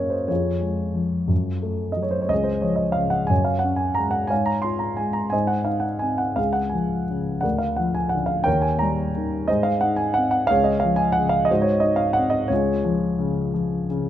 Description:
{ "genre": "classical, lyrical solo piano", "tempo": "59 BPM (dotted quarters)", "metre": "6/8", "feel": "rubato", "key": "Db major", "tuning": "A4 = 440 Hz", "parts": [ { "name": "dark baby grand piano", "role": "solo", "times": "0.0-14.1 s", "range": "Db2 to C6", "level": "-20 LUFS", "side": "equal", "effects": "none" } ], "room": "light reverb", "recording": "close, detailed microphones", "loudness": "-20 LUFS", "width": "side -11 dB against mid", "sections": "0.0-14.1 A section", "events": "none", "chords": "0.3 Db/F; 1.3 Gbmadd9; 2.3 Db; 3.3 Gbsus2; 4.3 Db/Ab; 5.3 Ab; 6.4 Db; 7.4 Bb/D; 8.5 Eb7; 9.5 Ab; 10.5 Db; 11.5 Ab7; 12.5 Db" }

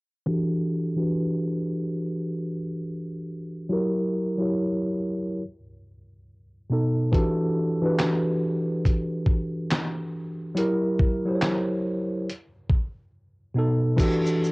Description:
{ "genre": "lo-fi hip hop", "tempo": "70 BPM", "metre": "4/4", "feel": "swing 62% on 16ths", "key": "E minor", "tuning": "A4 = 441 Hz", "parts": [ { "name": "mellow tine electric piano", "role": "accompaniment", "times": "0.3-14.5 s", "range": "B2 to C#5", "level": "-24 LUFS", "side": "equal", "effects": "medium stereo tremolo, cassette tape, low-pass filter" }, { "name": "dusty soul sampler-style drum kit", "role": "drums", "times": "7.1-14.5 s", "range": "crash cymbal, handclaps, hi-hat, kick drum, shaker, snare drum", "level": "-24 LUFS", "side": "equal", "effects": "cassette tape" } ], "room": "little or no reverb", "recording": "home recording on cassette", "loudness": "-23 LUFS", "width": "side -26 dB against mid", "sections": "0.3-14.0 A section", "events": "filter sweep on tine electric piano 0.3-14.0", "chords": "0.3 Em11; 3.7 F#7b9; 5.4 B7; 7.1 Em11; 10.6 F#7b9; 12.3 B7; 14.0 Em11" }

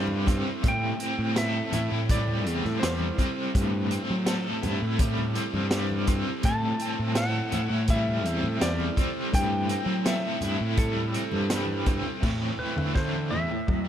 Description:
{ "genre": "psychedelic rock", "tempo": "83 BPM", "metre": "4/4", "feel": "straight", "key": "A minor", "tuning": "A4 = 444 Hz", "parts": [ { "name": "clean lap steel guitar", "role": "melody", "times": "0.0-13.9 s", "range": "A4 to A5", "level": "-33 LUFS", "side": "left 1 dB", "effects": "tape echo" }, { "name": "mellow tonewheel organ", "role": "sustained chords", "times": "0.0-13.9 s", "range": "C4 to G5", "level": "-38 LUFS", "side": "right 7 dB", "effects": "slow rotary speaker" }, { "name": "cranked stack guitar", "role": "riff", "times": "0.0-13.9 s", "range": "A2 to A4", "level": "-30 LUFS", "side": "equal", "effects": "overdrive, tremolo" }, { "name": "fuzz picked electric bass", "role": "bass", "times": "0.0-13.9 s", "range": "E2 to F#3", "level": "-29 LUFS", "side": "equal", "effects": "overdrive" }, { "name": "congas", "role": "percussion", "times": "0.1-13.5 s", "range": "none", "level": "-39 LUFS", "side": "left 3 dB", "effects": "none" }, { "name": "vintage drum kit", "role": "drums", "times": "0.3-13.8 s", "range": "crash cymbal, hi-hat, kick drum, snare drum, toms", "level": "-28 LUFS", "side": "equal", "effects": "tape echo" } ], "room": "small room ambience", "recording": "echo-heavy mix", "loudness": "-24 LUFS", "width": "side -10 dB against mid", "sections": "0.0-12.2 A section; 12.2-13.9 B section", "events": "drum fill 11.5-12.2", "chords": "0.0 Am7" }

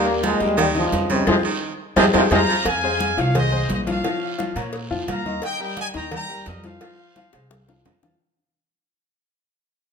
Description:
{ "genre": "latin, salsa", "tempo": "173 BPM", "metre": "4/4", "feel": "straight", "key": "F minor", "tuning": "A4 = 440 Hz", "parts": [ { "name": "clear trombone section", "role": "melody", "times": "0.0-2.4 s", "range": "C3 to Bb3", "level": "-21 LUFS", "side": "right 1 dB", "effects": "none" }, { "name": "edgy baritone saxophone", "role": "second line", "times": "0.0-2.6 s", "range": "Db3 to F3", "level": "-25 LUFS", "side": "right 6 dB", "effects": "none" }, { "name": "upright bass", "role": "bass", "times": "0.0-8.2 s", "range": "Bb1 to Bb2", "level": "-27 LUFS", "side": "equal", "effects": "none" }, { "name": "bright concert grand piano", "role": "accompaniment", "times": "0.1-8.2 s", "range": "Eb3 to Eb6", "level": "-25 LUFS", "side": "left 4 dB", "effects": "none" }, { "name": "congas", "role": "percussion", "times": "0.1-8.1 s", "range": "none", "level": "-28 LUFS", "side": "left 1 dB", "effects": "none" }, { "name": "agogo bells and timbales", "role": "percussion", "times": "0.2-8.1 s", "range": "none", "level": "-32 LUFS", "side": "right 7 dB", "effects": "none" }, { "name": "cowbell and bongos", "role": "percussion", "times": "0.2-8.1 s", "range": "none", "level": "-33 LUFS", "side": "left 4 dB", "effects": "none" }, { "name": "guiro", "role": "percussion", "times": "0.2-8.2 s", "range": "none", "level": "-37 LUFS", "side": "right 4 dB", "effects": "none" }, { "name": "claves", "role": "percussion", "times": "0.6-8.0 s", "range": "none", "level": "-35 LUFS", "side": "left 6 dB", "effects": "none" }, { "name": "brilliant horn section", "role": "melody", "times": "2.3-8.0 s", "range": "Bb4 to Bb5", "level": "-25 LUFS", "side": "left 1 dB", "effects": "none" } ], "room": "wet large studio reverb, RT60 1.3 s", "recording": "minimal, uncompressed stereo recording", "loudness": "-18 LUFS", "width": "side -6 dB against mid", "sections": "0.0-2.7 A section; 2.7-8.2 B section", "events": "drum fill 1.3-2.7, 7.3-8.2; band accent 1.3-2.7; fade-out 2.7-8.2", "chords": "0.0 Eb; 1.3 Fm; 2.7 Fm7; 4.0 Bbm; 5.4 Eb; 6.8 Fm" }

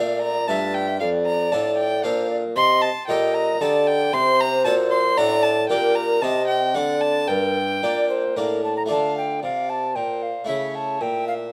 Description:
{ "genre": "classical, baroque-style sonata movement with continuo", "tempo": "114 BPM", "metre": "3/4", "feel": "straight", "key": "G minor", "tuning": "A4 = 439 Hz", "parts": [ { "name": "mellow tenor recorder", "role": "melody", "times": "0.0-11.3 s", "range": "Bb4 to Bb5", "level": "-26 LUFS", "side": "equal", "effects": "none" }, { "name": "rich violin", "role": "second line", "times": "0.0-11.5 s", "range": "C5 to C6", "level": "-26 LUFS", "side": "equal", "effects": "none" }, { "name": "harpsichord", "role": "accompaniment", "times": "0.0-11.5 s", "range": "F2 to E5", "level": "-30 LUFS", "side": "equal", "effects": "none" }, { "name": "mellow bassoon", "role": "bass", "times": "0.0-11.5 s", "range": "F2 to D3", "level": "-27 LUFS", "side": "equal", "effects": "none" } ], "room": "light reverb", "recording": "close, detailed microphones", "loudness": "-21 LUFS", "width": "mono", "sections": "0.0-8.9 A section; 8.9-11.5 A section", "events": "none", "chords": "0.0 Dm; 1.0 Dm/F; 2.6 Am7b5; 4.1 D7; 5.7 Gm/Bb; 6.2 Cm; 6.8 D7; 7.3 Gm; 8.9 Dm; 10.5 A" }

